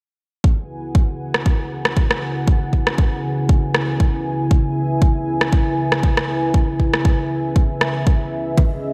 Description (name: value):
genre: afro house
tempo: 118 BPM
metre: 4/4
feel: swing 55% on 16ths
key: unclear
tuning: A4 = 440 Hz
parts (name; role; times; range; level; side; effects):
- dark analog pad; sustained chords; 0.4-8.9 s; C#3 to G#5; -24 LUFS; equal; chorus, sidechain pumping
- electronic kick drum; drums; 0.4-8.7 s; none; -18 LUFS; equal; none
- electronic rim click; drums; 1.3-7.9 s; none; -24 LUFS; equal; none
- congas; percussion; 8.6-8.7 s; none; -23 LUFS; equal; none
room: moderate lush hall reverb, RT60 2.1 s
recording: bright 1980s-style digital production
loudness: -19 LUFS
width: mono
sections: 0.4-8.9 A section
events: none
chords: 0.4 Eadd9/C#